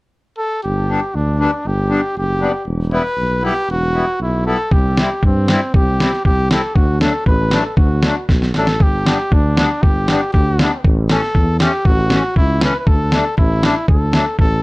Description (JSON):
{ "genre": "alpine folk, alpine dance band", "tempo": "118 BPM", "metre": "2/4", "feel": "straight", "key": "G major", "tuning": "A4 = 440 Hz", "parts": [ { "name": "warm trumpet", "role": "melody", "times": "0.4-14.6 s", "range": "C4 to B4", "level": "-20 LUFS", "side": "equal", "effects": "analog delay" }, { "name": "dark tuba", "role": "bass", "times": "0.6-14.6 s", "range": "E1 to G2", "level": "-18 LUFS", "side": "equal", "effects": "tube saturation" }, { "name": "accordion", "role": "accompaniment", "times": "0.9-14.3 s", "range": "E3 to E4", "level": "-20 LUFS", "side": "left 3 dB", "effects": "none" }, { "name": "lo-fi sampler-style drum kit", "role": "drums", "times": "4.7-14.5 s", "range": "kick drum, snare drum", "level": "-14 LUFS", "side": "equal", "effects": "none" } ], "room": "little or no reverb", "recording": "dry, gritty hardware recording, transformer saturation", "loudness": "-13 LUFS", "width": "side -22 dB against mid", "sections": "0.6-14.6 A section", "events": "drum fill 8.3-8.8", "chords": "0.0 N.C.; 0.6 G; 2.7 Em; 4.7 C; 6.8 D; 8.8 G; 10.8 A; 12.9 Dsus4; 13.9 D" }